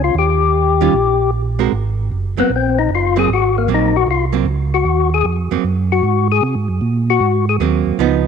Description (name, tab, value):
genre	soul jazz organ trio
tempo	153 BPM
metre	4/4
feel	swing 66% on 8ths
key	Ab mixolydian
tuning	A4 = 441 Hz
part	percussive tonewheel organ	melody	0.0-7.6 s	Bb3 to Ab4	-17 LUFS	left 9 dB	slow rotary speaker, overdrive, slapback echo
part	mellow tonewheel organ	bass	0.0-8.3 s	Gb1 to C3	-17 LUFS	right 3 dB	chorus vibrato, slow rotary speaker
part	archtop guitar, miked and amplified	accompaniment	0.8-8.3 s	Eb3 to Bb4	-19 LUFS	right 16 dB	none
room	light reverb, digital ambience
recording	1960s-style stereo with parts hard left and right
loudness	-13 LUFS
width	side -6 dB against mid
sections	0.0-1.7 A section; 1.7-8.3 B section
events	tonewheel organ solo 1.7-8.3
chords	0.2 Eb; 1.7 Ab9